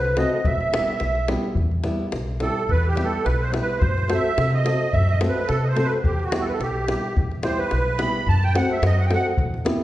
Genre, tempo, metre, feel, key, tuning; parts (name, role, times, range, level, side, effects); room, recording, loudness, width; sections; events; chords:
balkan folk, Balkan wedding band; 107 BPM; 2/4; swing 55% on 16ths; E harmonic minor; A4 = 440 Hz
warm clarinet; melody; 0.0-1.3 s; B4 to E5; -25 LUFS; right 1 dB
musette accordion; second line; 0.0-9.3 s; F#4 to B5; -25 LUFS; right 3 dB
upright bass; bass; 0.0-9.7 s; E1 to C3; -23 LUFS; equal
davul; percussion; 0.0-9.8 s; -27 LUFS; left 1 dB
flamenco guitar; accompaniment; 0.2-9.8 s; G3 to B4; -27 LUFS; left 1 dB
wet recital hall reverb, RT60 1.5 s; heard from further back in the room, nothing above 10.8 kHz; -19 LUFS; side -15 dB against mid
0.0-1.6 A section; 1.6-9.8 B section
accordion solo 1.6-9.8
0.5 Em; 3.8 F#dim; 6.1 Em; 8.3 F#dim